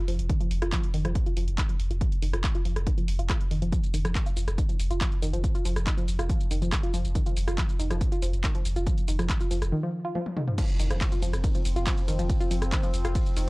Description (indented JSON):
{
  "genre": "driving peak-time techno",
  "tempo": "140 BPM",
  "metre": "4/4",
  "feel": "straight",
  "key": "unclear",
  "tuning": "A4 = 440 Hz",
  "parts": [
    { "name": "analog pluck", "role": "riff", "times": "0.0-13.4 s", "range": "Eb3 to F4", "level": "-33 LUFS", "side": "equal", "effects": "chorus, phaser, cassette tape, sidechain pumping, analog delay" },
    { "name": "saturated sub bass", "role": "bass", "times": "0.1-13.5 s", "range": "F1", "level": "-28 LUFS", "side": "equal", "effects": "tube saturation, sidechain pumping, low-pass filter" },
    { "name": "techno drum kit", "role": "drums", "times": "0.1-13.5 s", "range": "crash cymbal, handclaps, hi-hat, ride cymbal, rim click, shaker, toms", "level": "-34 LUFS", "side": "equal", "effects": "none" },
    { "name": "electronic kick drum", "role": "drums", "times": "0.3-13.2 s", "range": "none", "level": "-26 LUFS", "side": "equal", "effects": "none" },
    { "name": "analog drone", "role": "drone", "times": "11.3-13.5 s", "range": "F3 to C4", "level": "-37 LUFS", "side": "left 2 dB", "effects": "chorus, sidechain pumping" },
    { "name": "impact", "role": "sound effects", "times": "10.6-12.3 s", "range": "none", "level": "-40 LUFS", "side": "equal", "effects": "none" }
  ],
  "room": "little or no reverb",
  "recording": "dry, gritty hardware recording, cassette tape",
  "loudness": "-24 LUFS",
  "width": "side -24 dB against mid",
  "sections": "0.0-10.6 A section; 10.6-13.5 B section",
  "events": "filter sweep on synth arpeggio sound 0.0-10.6; break 9.7-10.6; drum fill 10.2-10.6; drop 10.6-13.5; impact 10.6-12.3",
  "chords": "0.0 N.C.; 10.6 F5"
}